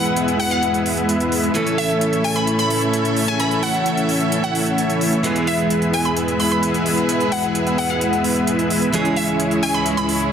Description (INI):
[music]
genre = EDM, festival progressive house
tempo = 130 BPM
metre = 4/4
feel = straight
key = E major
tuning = A4 = 443 Hz
[part]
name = glassy wavetable pluck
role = melody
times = 0.0-10.3 s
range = E5 to B5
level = -23 LUFS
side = left 1 dB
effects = chorus, tape echo
[part]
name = picked steel-string acoustic guitar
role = accompaniment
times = 0.0-10.3 s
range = A2 to A4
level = -25 LUFS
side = right 2 dB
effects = none
[part]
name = rich chamber string section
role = sustained chords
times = 0.0-10.3 s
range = C#2 to E5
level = -25 LUFS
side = equal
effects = low-pass filter
[part]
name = dense compressed supersaw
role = riff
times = 0.0-10.3 s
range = G#3 to E5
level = -20 LUFS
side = equal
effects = low-pass filter, tape echo
[part]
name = electronic hi-hat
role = drums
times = 0.1-10.3 s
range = none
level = -27 LUFS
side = right 2 dB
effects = none
[sound]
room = moderate digital room reverb, RT60 1.1 s, small room ambience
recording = dense, heavily limited modern master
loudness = -16 LUFS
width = side -8 dB against mid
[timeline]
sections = 0.0-10.3 A section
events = none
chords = 0.0 E; 1.6 A; 5.2 E; 8.9 C#m